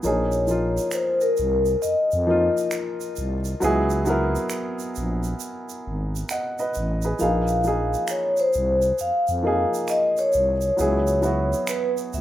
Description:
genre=R&B, neo-soul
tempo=67 BPM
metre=4/4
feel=swing 64% on 16ths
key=Bb minor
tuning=A4 = 439 Hz
part: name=vibraphone with soft mallets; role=melody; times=0.0-12.2 s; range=Bb4 to F5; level=-22 LUFS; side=left 1 dB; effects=tape echo
part: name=warm upright piano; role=accompaniment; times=0.0-12.2 s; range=F3 to Gb5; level=-26 LUFS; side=equal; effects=none
part: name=tube shaker and finger snaps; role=percussion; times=0.0-12.2 s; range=none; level=-35 LUFS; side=right 5 dB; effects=none
part: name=growling FM bass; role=bass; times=0.1-12.2 s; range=Ab1 to F2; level=-25 LUFS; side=equal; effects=none
room=light reverb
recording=rough home demo mix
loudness=-20 LUFS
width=side -13 dB against mid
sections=0.0-12.2 A section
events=none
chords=0.0 Bbm11; 3.6 Dbm7; 7.2 Bb9sus4; 10.8 Dbm7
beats=| 0.03 0.92 1.82 2.71 | 3.61 4.50 5.40 6.30 | 7.19 8.09 8.98 9.88 | 10.77 11.67

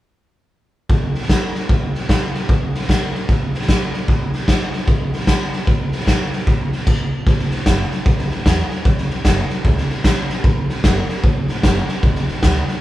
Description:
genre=rockabilly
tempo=151 BPM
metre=4/4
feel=swing 63% on 8ths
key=A major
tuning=A4 = 440 Hz
part: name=raw garage drum kit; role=drums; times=0.9-12.7 s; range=crash cymbal, hi-hat, kick drum, snare drum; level=-16 LUFS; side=equal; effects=none
part: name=upright bass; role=bass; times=7.3-12.7 s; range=E1 to E2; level=-24 LUFS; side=equal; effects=none
room=little or no reverb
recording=band playing live in one room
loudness=-15 LUFS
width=side -15 dB against mid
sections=0.9-7.3 A section; 7.3-12.8 B section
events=none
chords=none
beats=| 0.90 1.30 1.70 2.09 | 2.49 2.89 3.29 3.69 | 4.09 4.48 4.88 5.28 | 5.68 6.08 6.47 6.87 | 7.27 7.67 8.06 8.46 | 8.86 9.26 9.65 10.05 | 10.45 10.84 11.24 11.64 | 12.04 12.43

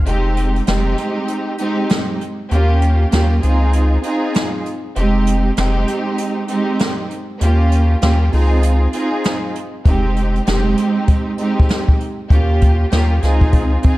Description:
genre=hip hop, boom-bap hip-hop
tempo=98 BPM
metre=4/4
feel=swing 62% on 16ths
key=F minor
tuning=A4 = 439 Hz
part: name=round analog bass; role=bass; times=0.0-13.8 s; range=F1 to Eb2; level=-15 LUFS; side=equal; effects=none
part: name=clear studio string section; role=accompaniment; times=0.1-14.0 s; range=Ab3 to Ab4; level=-19 LUFS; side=right 2 dB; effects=high-pass filter, low-pass filter
part: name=jazz brush drum kit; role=drums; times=0.1-14.0 s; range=hi-hat, kick drum, snare drum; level=-17 LUFS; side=equal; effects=none
room=light reverb, small room ambience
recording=dark, warm production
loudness=-14 LUFS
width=side -17 dB against mid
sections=0.1-14.0 A section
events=break 0.1-9.9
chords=0.1 Fm7; 2.5 Eb7; 3.4 Dbmaj7; 5.0 Fm7; 7.4 Eb7; 8.3 Dbmaj7; 9.9 Fm7; 12.3 Eb7; 13.2 Dbmaj7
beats=| 0.06 0.67 1.29 1.90 | 2.51 3.12 3.74 4.35 | 4.96 5.57 6.18 6.80 | 7.41 8.02 8.63 9.25 | 9.86 10.47 11.08 11.70 | 12.31 12.92 13.53

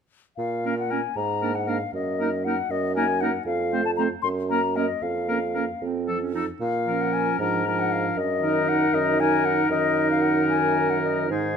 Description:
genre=quick classical-period movement for wind quintet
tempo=77 BPM (dotted quarters)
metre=6/8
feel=rubato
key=Bb minor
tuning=A4 = 440 Hz
part: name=concert flute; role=melody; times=0.4-11.6 s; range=C5 to C6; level=-26 LUFS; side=left 9 dB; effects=none
part: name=mellow bassoon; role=bass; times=0.4-11.6 s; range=F2 to Bb2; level=-26 LUFS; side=right 4 dB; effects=none
part: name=dark French horn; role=accompaniment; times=0.6-11.6 s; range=Eb3 to Bb3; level=-31 LUFS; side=right 1 dB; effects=none
part: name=clear oboe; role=second line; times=0.7-11.6 s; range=Ab4 to C5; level=-29 LUFS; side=left 4 dB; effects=none
part: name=bright clarinet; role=accompaniment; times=0.7-11.6 s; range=C4 to Eb4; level=-30 LUFS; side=right 9 dB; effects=none
room=moderate recital hall reverb, RT60 1.8 s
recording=close, detailed microphones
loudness=-21 LUFS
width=side -7 dB against mid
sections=0.4-11.6 A section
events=none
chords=0.4 Bbm; 1.2 Bb7/Ab; 1.9 Ebm/Gb; 3.5 F; 4.2 Gb; 5.0 Bbm/F; 5.8 F; 6.6 Bbm; 7.4 Bb7/Ab; 8.2 Ebm/Gb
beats=| 0.39 1.17 | 1.94 2.71 | 3.47 4.24 | 5.03 5.82 | 6.62 7.40 | 8.17 8.94 | 9.71 10.49 | 11.31

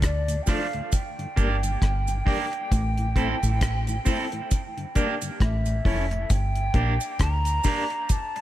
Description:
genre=roots reggae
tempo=67 BPM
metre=4/4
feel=swing 58% on 16ths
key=unclear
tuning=A4 = 439 Hz
part: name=mellow hollow jazz flute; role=melody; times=0.0-8.4 s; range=D5 to Bb5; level=-31 LUFS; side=right 1 dB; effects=dub echo
part: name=deep dub fingered electric bass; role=bass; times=0.0-7.6 s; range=F1 to D2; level=-24 LUFS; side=equal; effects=none
part: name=deep reggae drum kit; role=drums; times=0.0-8.4 s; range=hi-hat, kick drum, rim click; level=-25 LUFS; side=equal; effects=none
part: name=cabasa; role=percussion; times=0.0-8.3 s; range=none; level=-38 LUFS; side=right 6 dB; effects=none
part: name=mellow tonewheel organ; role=accompaniment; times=0.3-6.2 s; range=D2 to E4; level=-36 LUFS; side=left 1 dB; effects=chorus vibrato, slow rotary speaker, dub echo
part: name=electric guitar at the edge of break-up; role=accompaniment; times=0.5-8.4 s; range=F3 to A4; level=-32 LUFS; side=right 5 dB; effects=spring reverb, dub echo
part: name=reed electric piano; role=stabs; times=0.5-7.9 s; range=C4 to D5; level=-35 LUFS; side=left 4 dB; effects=fast tremolo
room=little or no reverb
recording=echo-heavy mix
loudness=-22 LUFS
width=side -14 dB against mid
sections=0.0-6.3 A section; 6.3-8.4 B section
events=none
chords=0.0 Dm; 0.9 Gm; 2.7 Am; 4.5 Gm; 5.4 A; 6.3 Gm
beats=0.02 0.92 1.82 | 2.71 3.61 4.51 5.41 | 6.30 7.20 8.10

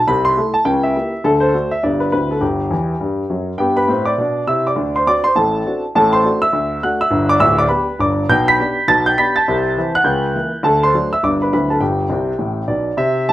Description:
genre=jazz, stride piano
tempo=204 BPM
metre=4/4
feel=swing 61% on 8ths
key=G major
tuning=A4 = 437 Hz
part: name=warm grand piano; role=solo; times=0.0-13.3 s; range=D1 to B6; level=-14 LUFS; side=equal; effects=none
room=wet studio ambience, RT60 0.5 s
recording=rough home demo mix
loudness=-14 LUFS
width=side -14 dB against mid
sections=0.0-3.6 A section; 3.6-13.0 A section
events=grand piano fill 2.7-3.6, 12.1-13.0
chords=0.1 Am/C; 0.6 C#dim7; 1.2 D7; 1.8 G; 2.1 D9; 2.4 Emadd9/G; 3.6 G; 4.8 D7; 5.9 D7/A; 7.1 G; 8.3 G/B; 9.5 Am/C; 10.1 C#dim7; 10.6 D7; 11.2 G; 11.5 D9; 11.8 G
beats=| 0.06 0.35 0.65 0.94 | 1.24 1.53 1.83 2.12 | 2.42 2.71 3.00 3.30 | 3.59 3.89 4.18 4.48 | 4.77 5.06 5.36 5.65 | 5.95 6.24 6.53 6.83 | 7.12 7.41 7.71 8.00 | 8.29 8.59 8.88 9.17 | 9.46 9.76 10.05 10.34 | 10.64 10.93 11.22 11.51 | 11.81 12.10 12.39 12.69 | 12.98 13.27

